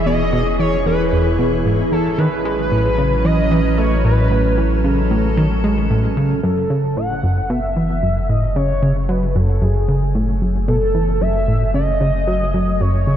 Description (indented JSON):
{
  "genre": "ambient, sequencer-driven space music",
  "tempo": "113 BPM",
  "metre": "4/4",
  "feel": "straight",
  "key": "unclear",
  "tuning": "A4 = 441 Hz",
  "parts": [
    { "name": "pulse-width lead", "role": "melody", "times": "0.0-13.2 s", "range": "G#4 to F#5", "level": "-22 LUFS", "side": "equal", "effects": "chorus, ping-pong delay" },
    { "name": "evolving wavetable pad", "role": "sustained chords", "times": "0.0-13.2 s", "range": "E3 to G#5", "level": "-23 LUFS", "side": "right 1 dB", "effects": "chorus, built-in reverb" },
    { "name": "warm sub bass", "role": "bass", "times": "0.0-13.2 s", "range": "E1 to A1", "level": "-21 LUFS", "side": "equal", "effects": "none" },
    { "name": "bubbling stepped-filter texture", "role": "texture", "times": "0.0-6.4 s", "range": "C#4 to C#5", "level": "-36 LUFS", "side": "right 1 dB", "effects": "none" },
    { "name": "plucky analog bass", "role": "riff", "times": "0.1-13.2 s", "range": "E2 to A3", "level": "-18 LUFS", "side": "equal", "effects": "ping-pong delay" }
  ],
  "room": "moderate lush hall reverb, RT60 2.4 s",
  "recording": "dark, warm production",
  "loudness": "-15 LUFS",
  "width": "side -10 dB against mid",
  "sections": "0.0-6.4 A section; 6.4-13.2 B section",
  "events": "none",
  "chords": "0.0 Emaj7; 2.2 A69; 6.4 F#madd9"
}